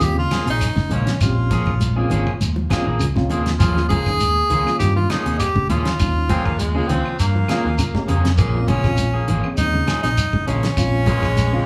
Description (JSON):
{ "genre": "afrobeat", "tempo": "100 BPM", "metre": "4/4", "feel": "swing 53% on 16ths", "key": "Eb mixolydian", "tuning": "A4 = 440 Hz", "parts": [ { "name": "breathy tenor saxophone", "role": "melody", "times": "0.0-11.7 s", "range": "Bb3 to Ab4", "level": "-25 LUFS", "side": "equal", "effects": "none" }, { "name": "tine electric piano", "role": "accompaniment", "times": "0.0-11.7 s", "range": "Ab3 to Ab4", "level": "-29 LUFS", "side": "equal", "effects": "overdrive" }, { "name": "clean electric guitar", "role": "arpeggios", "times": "0.0-11.6 s", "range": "Bb2 to F3", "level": "-29 LUFS", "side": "equal", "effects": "none" }, { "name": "fingered electric bass", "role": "bass", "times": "0.0-11.6 s", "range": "Ab1 to G2", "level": "-24 LUFS", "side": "equal", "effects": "none" }, { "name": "damped 70s drum kit", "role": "drums", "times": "0.0-11.5 s", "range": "hi-hat, kick drum, snare drum", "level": "-26 LUFS", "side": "equal", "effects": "none" }, { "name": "shekere", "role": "percussion", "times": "0.0-11.5 s", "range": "none", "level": "-27 LUFS", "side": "equal", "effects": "none" }, { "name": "electric guitar at the edge of break-up", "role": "stabs", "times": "0.3-11.3 s", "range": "F3 to Ab4", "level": "-30 LUFS", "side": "equal", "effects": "spring reverb" }, { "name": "claves", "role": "percussion", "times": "0.3-11.4 s", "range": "none", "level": "-39 LUFS", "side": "equal", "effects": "none" }, { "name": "congas", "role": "percussion", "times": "0.3-11.5 s", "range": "none", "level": "-30 LUFS", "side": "equal", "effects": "none" }, { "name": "raspy baritone saxophone", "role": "second line", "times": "6.3-11.7 s", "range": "Ab3 to C4", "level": "-29 LUFS", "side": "equal", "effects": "none" } ], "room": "wet studio ambience, RT60 0.4 s", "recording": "band playing live in one room, small room reverb", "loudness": "-19 LUFS", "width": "mono", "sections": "0.0-11.7 A section", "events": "none", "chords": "0.0 Bbm7; 3.6 Eb9sus4; 8.4 Bbm7" }